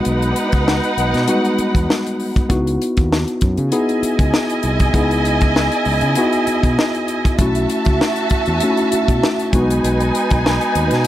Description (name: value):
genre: lush 1970s-style soul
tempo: 98 BPM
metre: 4/4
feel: swing 54% on 16ths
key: C# minor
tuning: A4 = 440 Hz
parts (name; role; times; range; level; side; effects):
- warm studio string section; second line; 0.0-11.1 s; D#4 to A5; -20 LUFS; right 2 dB; none
- mellow tine electric piano; accompaniment; 0.0-11.1 s; G3 to G#4; -19 LUFS; left 1 dB; none
- tight funk drum kit; drums; 0.0-11.1 s; hi-hat, kick drum, snare drum; -19 LUFS; equal; none
- overdriven fingered electric bass; bass; 0.1-11.0 s; B1 to C#3; -20 LUFS; equal; none
room: small room ambience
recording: none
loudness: -14 LUFS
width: side -13 dB against mid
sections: 0.0-11.1 A section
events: none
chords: 0.0 Emaj9/B (rootless); 2.5 C#m11; 7.4 B9sus4; 9.5 B6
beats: | 0.06 0.67 1.28 1.89 | 2.50 3.11 3.73 4.34 | 4.95 5.56 6.17 6.78 | 7.39 8.00 8.61 9.22 | 9.84 10.45 11.06